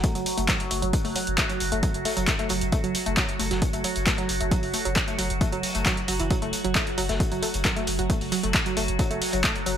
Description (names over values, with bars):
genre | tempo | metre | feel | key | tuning
driving peak-time techno | 134 BPM | 4/4 | straight | F# minor | A4 = 440 Hz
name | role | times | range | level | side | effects
analog pluck | riff | 0.0-9.8 s | E3 to A3 | -30 LUFS | equal | chorus, tube saturation, sidechain pumping, ping-pong delay
warm sub bass | bass | 0.0-9.8 s | F#1 | -31 LUFS | equal | overdrive, sidechain pumping, low-pass filter
overtone-sweeping drone | drone | 0.0-9.8 s | F#3 to F#4 | -31 LUFS | right 3 dB | chorus, built-in reverb, sidechain pumping
electronic kick drum | drums | 0.0-9.5 s | none | -26 LUFS | equal | none
punchy analog drum machine | drums | 0.0-9.8 s | handclaps, hi-hat | -27 LUFS | equal | none
vintage drum kit | drums | 0.0-9.8 s | hi-hat, snare drum | -36 LUFS | equal | none
room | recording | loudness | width
light reverb | bright 1980s-style digital production | -22 LUFS | side -9 dB against mid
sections
0.0-9.8 A section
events
none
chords
0.0 F#m